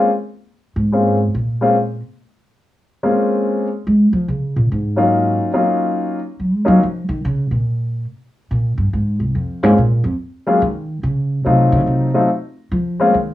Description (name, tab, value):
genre	jazz piano trio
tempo	142 BPM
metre	3/4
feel	swing 65% on 8ths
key	Bb minor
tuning	A4 = 440 Hz
part	warm grand piano	melody	0.0-6.8, 9.6-13.1 s	Gb3 to F4	-15 LUFS	left 2 dB	none
part	upright bass	bass	0.8-13.3 s	C2 to Ab3	-17 LUFS	equal	none
room	moderate studio reverb, RT60 0.5 s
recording	worn, warbling old tape, cassette tape, warbly pitch drift, small room ambience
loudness	-15 LUFS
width	side -14 dB against mid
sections	0.1-13.3 A section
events	upright bass solo 0.0-13.3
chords	0.1 Bbm7; 5.1 Ebm7; 8.9 Bb7(no3); 10.2 N.C.; 11.4 F7b9; 12.7 Bb7(no3) (rootless)